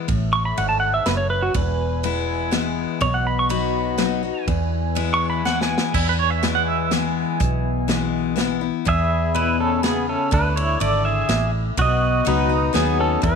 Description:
honky-tonk and classic country; 123 BPM; 3/4; straight; A4 = 440 Hz
picked steel-string acoustic guitar; accompaniment; 0.0-13.4 s; E2 to F#4; -24 LUFS; left 13 dB
mellow large flute ensemble; sustained chords; 0.1-13.4 s; E4 to E6; -30 LUFS; right 1 dB
vintage muted fingered electric bass; bass; 0.1-13.4 s; E1 to E2; -24 LUFS; right 2 dB
natural country drum kit; drums; 0.1-13.3 s; crash cymbal, hi-hat, kick drum, ride cymbal, snare drum; -27 LUFS; right 2 dB
pedal steel guitar; melody; 0.3-5.9, 8.9-13.4 s; B3 to C#6; -22 LUFS; right 2 dB
twangy electric guitar; second line; 5.9-6.9 s; E4 to F#5; -23 LUFS; right 17 dB; tremolo, tape echo
light reverb, small room ambience; 1960s-style stereo with parts hard left and right; -18 LUFS; side -6 dB against mid
0.0-5.9 A section; 5.9-8.9 B section; 8.9-13.4 C section
pedal steel guitar solo 0.0-5.9; drum fill 5.5-5.9
0.1 A; 1.6 E; 3.0 B; 4.5 E; 10.3 Dsus2; 11.8 B

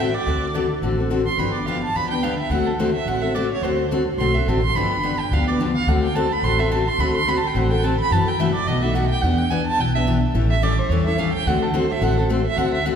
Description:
acoustic string swing (jazz manouche); 214 BPM; 4/4; swing 57% on 8ths; D mixolydian; A4 = 443 Hz
warm violin; second line; 0.0-13.0 s; A4 to C6; -24 LUFS; right 4 dB
picked steel-string acoustic guitar; accompaniment; 0.0-13.0 s; B2 to A4; -22 LUFS; left 2 dB
upright bass; bass; 0.0-13.0 s; G1 to F#2; -23 LUFS; equal
wet concert hall reverb, RT60 2.1 s; recorded in a church or concert hall; -18 LUFS; side -7 dB against mid
0.3-13.0 A section
violin solo 0.0-13.0
0.3 D7; 1.4 G7; 2.5 D7; 4.8 G7; 5.9 D7; 8.1 F#m7b5; 8.7 B7; 9.2 Em7; 10.3 A7; 11.5 D7

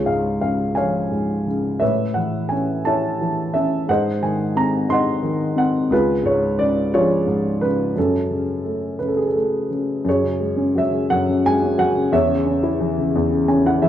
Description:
classical, lyrical solo piano; 58 BPM (dotted quarters); 6/8; rubato; F# minor; A4 = 440 Hz
dark baby grand piano; solo; 0.0-13.9 s; C#2 to B#5; -17 LUFS; equal
moderate recital hall reverb, RT60 1.8 s; dark, warm production; -17 LUFS; side -11 dB against mid
0.0-10.1 A section; 10.1-13.9 B section
grand piano fill 13.2-13.9
0.0 C#; 1.8 Aadd9; 3.9 G#7; 5.9 C#; 8.0 F#m; 10.1 F#sus2; 12.1 E69

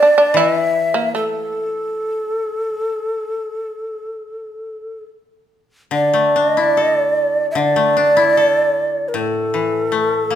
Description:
japanese traditional, Japanese chamber music; 69-81 BPM; 4/4; rubato; A4 = 440 Hz
breathy mellow shakuhachi; melody; 0.0-10.4 s; A4 to E5; -16 LUFS; right 1 dB
shamisen; second line; 0.0-5.1 s; A3 to E4; -20 LUFS; right 4 dB
koto; accompaniment; 0.3-10.4 s; A2 to A4; -20 LUFS; left 6 dB
moderate recital hall reverb, RT60 1.4 s; minimal, uncompressed stereo recording; -15 LUFS; side -10 dB against mid
0.0-5.9 A section; 5.9-10.4 B section

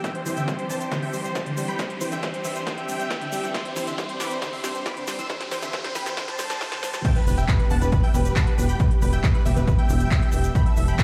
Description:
uplifting trance; 137 BPM; 4/4; straight; E minor; A4 = 437 Hz
dense compressed supersaw; melody; 0.0-11.0 s; G4 to E6; -33 LUFS; equal; sidechain pumping, low-pass filter, dub echo
muted chamber string section; sustained chords; 0.0-11.0 s; E3 to A4; -35 LUFS; equal; sidechain pumping
unison pluck; arpeggios; 0.0-7.0 s; D3 to G3; -37 LUFS; equal; sidechain pumping, dub echo
big-room dance drum kit; drums; 0.0-11.0 s; crash cymbal, handclaps, hi-hat, snare drum; -35 LUFS; equal; overdrive, sidechain pumping on hats, high-pass filter on hats, high-pass filter on snare, sidechain pumping on cymbals, high-pass filter on cymbals, high-pass filter on room
electronic kick drum; drums; 0.0-11.0 s; -25 LUFS; equal; overdrive, high-pass filter on kick, high-pass filter on room
egg shaker; percussion; 0.0-11.0 s; -43 LUFS; equal
riser and impact; sound effects; 0.0-8.8 s; -38 LUFS; equal
unison pluck; second line; 7.0-11.0 s; B4 to B5; -37 LUFS; equal; sidechain pumping
tight sequencer bass; bass; 7.3-11.0 s; E1; -25 LUFS; equal; sidechain pumping
light reverb, digital ambience; played on a big sound system in a bare room, large studio reverb, high-pass filter; -24 LUFS; mono
0.0-7.0 A section; 7.0-11.0 B section
build-up 0.0-7.0; riser 0.0-7.0; filter sweep on synth arpeggio sound 0.0-7.0; filter sweep 0.0-7.0; drum fill 0.0-7.0; drop 7.0-11.0; impact 7.0-8.8
0.0 Cadd9; 7.0 Em

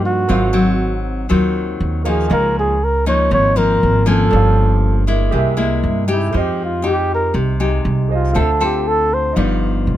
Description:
bossa nova; 119 BPM; 4/4; straight; A4 = 440 Hz
clear concert grand piano; accompaniment; 0.0-10.0 s; Bb3 to F5; -27 LUFS; right 5 dB
nylon-string guitar; accompaniment; 0.0-10.0 s; G2 to A4; -19 LUFS; left 3 dB
upright bass; bass; 0.0-10.0 s; G1 to G2; -18 LUFS; right 1 dB
mellow flugelhorn; melody; 0.1-9.4 s; E4 to Db5; -18 LUFS; right 1 dB
little or no reverb; close, detailed microphones; -14 LUFS; side -12 dB against mid
0.0-10.0 A section
0.3 Ab13; 2.3 Db69; 4.3 Gm7b5; 5.3 C7b13; 6.3 Fm9; 8.3 Dm7; 9.4 G7b13

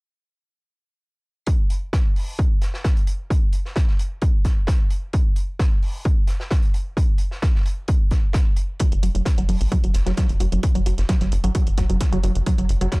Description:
driving peak-time techno; 131 BPM; 4/4; straight; A4 = 442 Hz
crunchy breakbeat drum kit; drums; 1.5-13.0 s; hi-hat, snare drum; -36 LUFS; equal; high-pass filter on hats, high-pass filter on snare, high-pass filter on room
electronic kick drum; drums; 1.5-13.0 s; -19 LUFS; equal
tight sequenced synth; riff; 8.8-13.0 s; F#3; -26 LUFS; right 2 dB; chorus, sidechain pumping, dub echo
electronic hi-hat; drums; 8.8-13.0 s; -36 LUFS; right 2 dB; sidechain pumping on hats
tight sequencer bass; bass; 8.9-12.9 s; F#1 to G#1; -22 LUFS; equal; sidechain pumping
little or no reverb; dark, warm production; -18 LUFS; side -25 dB against mid
1.5-13.0 A section

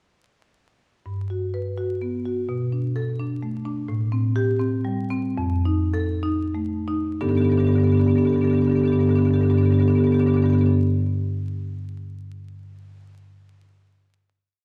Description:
classical, contemporary piece for solo marimba; 59-86 BPM (dotted quarters); 6/8; rubato; G major; A4 = 440 Hz
marimba with medium mallets; solo; 1.1-10.7 s; F2 to B4; -22 LUFS; equal
wet recital hall reverb, RT60 1.4 s; recorded in a church or concert hall, vinyl crackle; -22 LUFS; mono
1.1-7.2 A section; 7.2-11.2 final chord
slowing down 3.2-7.2
1.1 Gmaj7; 2.5 Bm7; 3.9 Am7; 5.4 F7; 7.2 Gadd9

